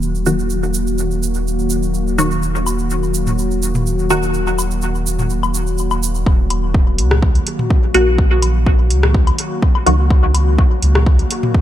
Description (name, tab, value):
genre	dub techno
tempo	125 BPM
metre	4/4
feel	swing 53% on 16ths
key	Eb minor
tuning	A4 = 440 Hz
part	airy breathy pad	sustained chords	0.0-11.6 s	Eb3 to Gb4	-22 LUFS	equal	chorus, sidechain pumping
part	soft dub sub bass	bass	0.0-11.2 s	Eb1 to Db2	-17 LUFS	equal	sidechain pumping
part	egg shaker	percussion	0.0-6.2 s	none	-27 LUFS	right 8 dB	none
part	filtered dub chord stab	stabs	0.3-4.4, 7.9-10.1 s	Eb3 to Gb4	-20 LUFS	equal	phaser, cassette tape, sidechain pumping, dub echo
part	electronic woodblock and toms	percussion	2.7-11.5 s	none	-25 LUFS	left 2 dB	sidechain pumping on toms, sidechain pumping on perc, dub echo
part	electronic kick drum	drums	6.3-11.6 s	none	-13 LUFS	equal	overdrive
part	soft vintage rhythm box	drums	6.5-11.4 s	hi-hat, rim click	-21 LUFS	left 1 dB	low-pass filter on snare, low-pass filter on hats, dub echo
room	light reverb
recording	none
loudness	-13 LUFS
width	side -12 dB against mid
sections	0.0-6.3 A section; 6.3-11.6 B section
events	filter sweep on synth stab 0.0-6.3; filter sweep on analog synth pad 0.0-6.3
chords	0.0 Ebm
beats	0.03 | 0.51 0.98 1.47 1.95 | 2.42 2.90 3.38 3.87 | 4.34 4.83 5.30 5.79 | 6.26 6.75 7.22 7.71 | 8.19 8.66 9.14 9.62 | 10.11 10.59 11.06 11.54